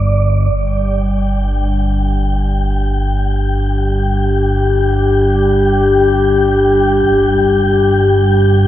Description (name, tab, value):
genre	dark ambient drone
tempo	free time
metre	none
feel	none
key	unclear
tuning	A4 = 440 Hz
part	analog drone	drone	0.0-8.7 s	G1 to G2	-15 LUFS	equal	lush chorus
part	wind-like tuned noise texture	texture	0.0-8.7 s	D5 to G5	-21 LUFS	left 1 dB	built-in reverb
part	dark analog pad	sustained chords	0.5-8.7 s	G3 to G5	-14 LUFS	left 2 dB	chorus
part	impact	percussion	7.0-7.2 s	none	barely audible	none	none
room	wet cathedral reverb, RT60 5.3 s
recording	none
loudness	-11 LUFS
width	side -13 dB against mid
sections	0.5-8.7 A section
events	filter sweep on synth drone 0.5-8.7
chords	0.0 G5